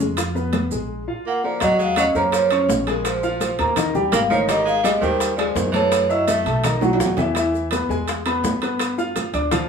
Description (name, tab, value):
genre	Afro-Cuban jazz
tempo	167 BPM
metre	4/4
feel	straight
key	unclear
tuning	A4 = 440 Hz
part	warm baby grand piano	accompaniment	0.0-9.7 s	Eb3 to F6	-22 LUFS	left 2 dB	none
part	upright bass	bass	0.0-9.7 s	Ab1 to G2	-28 LUFS	equal	none
part	maracas	percussion	0.0-9.7 s	none	-35 LUFS	right 5 dB	none
part	bongos	percussion	0.2-9.7 s	none	-30 LUFS	left 4 dB	none
part	congas	percussion	0.2-9.7 s	none	-29 LUFS	equal	none
part	timbales	percussion	0.2-9.7 s	none	-27 LUFS	right 4 dB	none
part	vibraphone with soft mallets	melody	1.3-6.6 s	Bb4 to Gb5	-21 LUFS	right 2 dB	none
part	bright tenor saxophone	second line	1.3-6.6 s	Db3 to Bb3	-25 LUFS	right 4 dB	none
room	wet small room reverb, RT60 0.6 s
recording	band playing live in one room, small room ambience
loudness	-18 LUFS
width	side -6 dB against mid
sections	0.0-1.6 A section; 1.6-9.7 B section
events	break 0.9-1.6; drum fill 6.8-7.4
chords	0.2 Fdim; 0.9 Bb5; 1.6 Ebm9; 3.1 Bbsus2; 3.8 Eb; 4.5 Abmaj7; 5.9 Gbm7; 6.6 B; 7.4 E; 8.8 G7